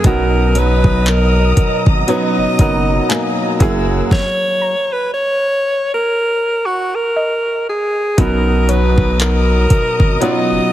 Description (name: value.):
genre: contemporary R&B.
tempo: 59 BPM.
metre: 4/4.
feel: swing 58% on 16ths.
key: unclear.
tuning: A4 = 441 Hz.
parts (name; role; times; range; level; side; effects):
clear alto saxophone; melody; 0.0-10.7 s; Gb4 to D#5; -17 LUFS; equal; ping-pong delay.
clear baby grand piano; accompaniment; 0.0-10.7 s; F#3 to B4; -19 LUFS; right 3 dB; none.
muted studio string section; sustained chords; 0.0-10.7 s; Bb4 to Fb6; -24 LUFS; equal; none.
flamenco guitar; arpeggios; 0.0-10.7 s; Gb2 to A#3; -22 LUFS; left 4 dB; ping-pong delay.
saturated sub bass; bass; 0.0-10.6 s; F#1 to B1; -16 LUFS; equal; none.
smooth R&B drum kit; drums; 0.0-10.5 s; handclaps, hi-hat, kick drum, snare drum; -14 LUFS; equal; none.
soft round pluck; texture; 3.1-10.7 s; Db5 to Db6; -26 LUFS; left 2 dB; chorus, ping-pong delay.
room: little or no reverb.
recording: heavily compressed radio sound, multiband compression, faint mains hum.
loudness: -12 LUFS.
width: side -13 dB against mid.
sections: 0.0-8.2 A section; 8.2-10.7 A section.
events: stop 4.1-8.2.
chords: 0.0 Bmaj7; 3.6 Gb7; 7.2 Absus24; 8.2 Bmaj7.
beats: | 0.04 1.06 2.08 3.10 | 4.11 5.13 6.14 7.16 | 8.18 9.20 10.21.